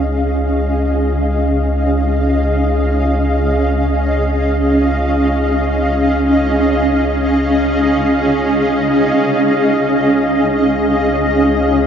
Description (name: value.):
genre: ambient.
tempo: free time.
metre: none.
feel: none.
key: Db major.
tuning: A4 = 439 Hz.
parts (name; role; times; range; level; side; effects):
granular cloud pad; sustained chords; 0.0-11.9 s; Db4 to F5; -13 LUFS; equal; built-in reverb.
warm sub bass; bass; 0.0-11.9 s; Db2; -19 LUFS; equal; none.
room: wet huge ambient reverb, RT60 7.6 s.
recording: nothing above 7.5 kHz.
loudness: -12 LUFS.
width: side -8 dB against mid.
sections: 0.0-9.2 A section; 9.2-11.9 B section.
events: filter sweep on ambient pad 0.0-9.2.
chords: 0.0 Dbadd9.